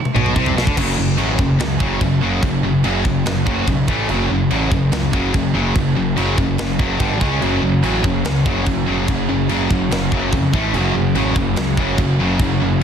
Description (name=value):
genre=heavy metal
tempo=144 BPM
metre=4/4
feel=straight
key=F# minor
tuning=A4 = 435 Hz
part: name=high-gain distorted guitar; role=riff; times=0.1-12.8 s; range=F#2 to C#4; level=-21 LUFS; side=left 11 dB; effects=distortion
part: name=overdriven semi-hollow guitar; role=riff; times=0.1-0.8, 7.4-12.8 s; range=F#2 to F#3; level=-24 LUFS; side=equal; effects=none
part: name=tight metal drum kit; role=drums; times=0.1-12.5 s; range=china cymbal, crash cymbal, kick drum, snare drum, toms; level=-22 LUFS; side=equal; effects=soft clipping on kick
part: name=heavy high-gain guitar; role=riff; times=0.2-12.8 s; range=F#2 to C#4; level=-21 LUFS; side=right 9 dB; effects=distortion
part: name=fuzz picked electric bass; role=bass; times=0.2-12.8 s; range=F#1 to E#2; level=-22 LUFS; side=equal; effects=overdrive
room=little or no reverb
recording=dense, heavily limited modern master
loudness=-15 LUFS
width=side -8 dB against mid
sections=0.8-12.8 A section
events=drum fill 0.0-0.8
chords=0.0 Bm; 0.8 F#5; 3.9 A5; 4.1 F#5; 7.0 G5; 7.2 C#5; 7.4 F#5; 10.5 A5; 10.8 F#5